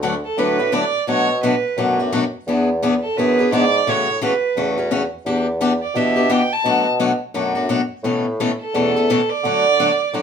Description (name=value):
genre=acoustic string swing (jazz manouche)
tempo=172 BPM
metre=4/4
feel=swing 61% on 8ths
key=D major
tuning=A4 = 441 Hz
part: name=picked swing-style acoustic guitar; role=accompaniment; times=0.0-10.2 s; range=B2 to B4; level=-20 LUFS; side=left 3 dB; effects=none
part: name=warm bassoon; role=bass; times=0.0-10.2 s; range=D2 to D3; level=-23 LUFS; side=equal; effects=none
part: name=warm violin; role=melody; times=0.2-10.2 s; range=A4 to A5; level=-19 LUFS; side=right 4 dB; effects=none
room=moderate studio reverb, RT60 0.6 s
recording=minimal, uncompressed stereo recording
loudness=-16 LUFS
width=side -7 dB against mid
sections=0.0-10.2 A section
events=none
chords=0.0 D6; 1.1 Bm7; 2.5 E7; 3.9 A6; 5.3 Em7; 6.6 Bm7; 8.0 Aadd9; 9.4 D